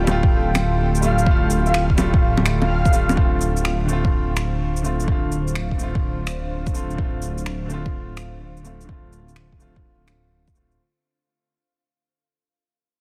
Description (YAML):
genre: future garage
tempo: 126 BPM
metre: 4/4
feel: swing 67% on 16ths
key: D minor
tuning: A4 = 439 Hz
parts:
  - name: warm upright piano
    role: accompaniment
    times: 0.0-10.8 s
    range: D3 to F4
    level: -30 LUFS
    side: equal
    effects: sidechain pumping, low-pass filter, delay
  - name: deep dark ambient pad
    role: sustained chords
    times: 0.0-10.8 s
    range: D4 to G5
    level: -35 LUFS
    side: equal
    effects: chorus, built-in reverb, sidechain pumping
  - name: dark detuned saw bass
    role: bass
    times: 0.0-10.8 s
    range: D1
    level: -25 LUFS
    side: equal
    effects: tube saturation, sidechain pumping
  - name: electronic bongos, shaker and finger snaps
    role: drums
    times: 0.1-10.8 s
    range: none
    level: -28 LUFS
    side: equal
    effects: overdrive, soft clipping on snare
  - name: electronic kick drum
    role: drums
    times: 0.2-10.5 s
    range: none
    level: -22 LUFS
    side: equal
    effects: overdrive
  - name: breathy flute-like synth lead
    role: melody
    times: 1.0-3.2 s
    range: F5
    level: -30 LUFS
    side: equal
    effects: ensemble chorus, cassette tape, tape echo
room: digital ambience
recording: dense, heavily limited modern master, vinyl crackle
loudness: -21 LUFS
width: mono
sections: 0.0-3.2 A section; 3.2-10.8 B section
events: fade-out 3.2-10.8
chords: 0.0 Fadd9/D; 3.2 Dm7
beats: 0.31 0.79 | 1.27 1.74 2.22 2.69 | 3.17 3.65 4.12 4.60 | 5.08 5.55 6.03 6.50 | 6.98 7.46 7.93 8.41 | 8.88 9.36 9.84 10.31